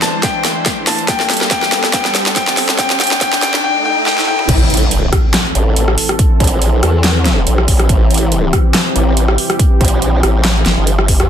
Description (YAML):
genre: heavy wobble dubstep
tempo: 141 BPM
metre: 4/4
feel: swing 54% on 16ths, half-time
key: A phrygian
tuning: A4 = 440 Hz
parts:
  - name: clear baby grand piano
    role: melody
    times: 0.0-4.5 s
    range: G5 to A5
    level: -18 LUFS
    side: left 3 dB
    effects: ping-pong delay
  - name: supersaw pad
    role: sustained chords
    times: 0.0-11.3 s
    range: E3 to C5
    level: -20 LUFS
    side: equal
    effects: sidechain pumping, low-pass filter
  - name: big-room dance drum kit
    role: drums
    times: 0.0-11.3 s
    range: crash cymbal, handclaps, hi-hat, rim click, snare drum, toms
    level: -15 LUFS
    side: equal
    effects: high-pass filter on snare, high-pass filter on hats, high-pass filter on toms, high-pass filter on cymbals, high-pass filter on room
  - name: riser, swell and impact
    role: sound effects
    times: 0.0-6.2 s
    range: none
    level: -20 LUFS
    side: equal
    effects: none
  - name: electronic kick drum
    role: drums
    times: 0.2-11.2 s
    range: none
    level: -14 LUFS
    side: equal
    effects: none
  - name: formant-sweep wobble bass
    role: bass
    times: 4.5-11.3 s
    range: G1 to E2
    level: -14 LUFS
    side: equal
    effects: chorus, overdrive
room: light reverb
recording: dense, heavily limited modern master, high-pass filter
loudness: -11 LUFS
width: side -9 dB against mid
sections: 0.0-4.5 A section; 4.5-11.3 B section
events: build-up 0.0-4.5; drum fill 0.0-3.6, 4.1-4.5; riser 0.0-4.5; filter sweep on grand piano 0.0-4.5; swell 3.6-4.5; drop 4.5-11.3; impact 4.5-6.2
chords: 0.0 Cadd9; 1.1 Dsus4; 4.5 Am